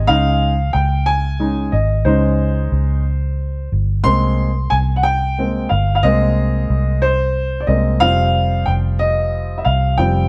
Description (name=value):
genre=six-eight pop ballad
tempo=61 BPM (dotted quarters)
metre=6/8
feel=straight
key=Ab major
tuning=A4 = 440 Hz
part: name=warm upright piano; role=accompaniment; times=0.0-10.3 s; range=F3 to C6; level=-20 LUFS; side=equal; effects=none
part: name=vintage muted fingered electric bass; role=bass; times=0.0-10.3 s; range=F1 to Db2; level=-19 LUFS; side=equal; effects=none
room=light reverb, small room reverb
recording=none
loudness=-17 LUFS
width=mono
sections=0.0-10.3 A section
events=upright piano solo 0.0-10.3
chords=0.1 Dbsus2; 4.0 Abadd9; 8.0 Fsus2